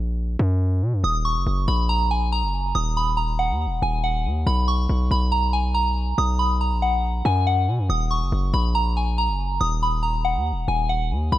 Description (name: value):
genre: hip hop, drill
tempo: 140 BPM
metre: 4/4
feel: half-time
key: Eb minor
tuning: A4 = 440 Hz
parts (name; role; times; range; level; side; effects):
- hard-hitting 808-style bass; bass; 0.0-11.4 s; Eb1 to B2; -22 LUFS; equal; none
- soft synth bell; melody; 1.0-11.4 s; Gb5 to Eb6; -23 LUFS; equal; chorus, phaser, low-pass filter, tape echo
room: little or no reverb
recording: nothing above 10.6 kHz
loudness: -20 LUFS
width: side -14 dB against mid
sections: 0.0-11.4 A section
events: break 0.0-1.0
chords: 0.0 N.C.; 1.0 Ebm; 4.5 B5; 7.9 Ebm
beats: 0.18 0.61 | 1.04 1.47 1.89 2.32 | 2.75 3.18 3.61 4.04 | 4.46 4.89 5.32 5.75 | 6.18 6.61 7.04 7.46 | 7.89 8.32 8.75 9.18 | 9.61 10.04 10.46 10.89 | 11.32